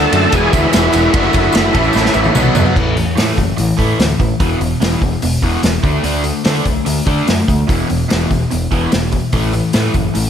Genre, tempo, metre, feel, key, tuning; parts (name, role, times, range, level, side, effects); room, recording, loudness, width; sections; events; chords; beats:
classic rock; 146 BPM; 4/4; straight; A4 = 440 Hz
overdriven tonewheel organ; melody; 0.0-2.3 s; E4 to A4; -17 LUFS; equal; slow rotary speaker, chorus vibrato, slapback echo
phased string machine; sustained chords; 0.0-2.8 s; E3 to B4; -29 LUFS; equal
cranked stack guitar; riff; 0.0-2.8 s; E2 to D4; -19 LUFS; equal; overdrive, slapback echo
crunchy overdriven guitar; riff; 0.0-10.3 s; E2 to A4; -19 LUFS; left 9 dB; slapback echo
overdriven electric guitar; riff; 0.0-10.3 s; E2 to F#4; -20 LUFS; right 9 dB; phaser
growling picked electric bass; bass; 0.0-10.3 s; E1 to D3; -18 LUFS; equal; overdrive
tambourine; percussion; 0.0-2.7 s; -30 LUFS; right 9 dB
vintage drum kit; drums; 0.1-10.2 s; crash cymbal, hi-hat, kick drum, ride cymbal, snare drum, toms; -17 LUFS; equal
light reverb, small room ambience; -12 LUFS; side -8 dB against mid
0.0-2.8 A section; 2.8-10.3 B section
drum fill 2.0-2.8
0.3 E; 1.1 D/F#; 1.7 A; 2.4 B6; 2.8 A5; 4.4 E5; 5.8 D5; 7.7 E5; 9.3 A5
0.32 0.73 | 1.14 1.54 1.95 2.36 | 2.77 3.18 3.59 4.00 | 4.41 4.82 5.23 5.64 | 6.05 6.46 6.87 7.28 | 7.69 8.10 8.51 8.92 | 9.33 9.74 10.15